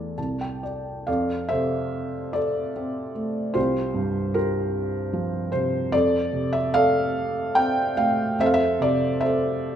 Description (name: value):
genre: classical, lyrical solo piano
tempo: 74 BPM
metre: 3/4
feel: uneven beats, rubato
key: F major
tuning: A4 = 440 Hz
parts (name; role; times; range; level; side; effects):
- felt-muted upright piano; solo; 0.0-9.8 s; C2 to A5; -22 LUFS; equal; none
room: moderate recital hall reverb, RT60 1.4 s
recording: minimal, uncompressed stereo recording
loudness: -21 LUFS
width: side -9 dB against mid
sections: 0.0-1.1 A section; 1.1-9.8 B section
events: felt piano fill 0.0-1.1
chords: 0.2 Amadd11/C; 1.1 F6; 3.6 C7sus4; 5.9 F6; 8.4 Fmaj7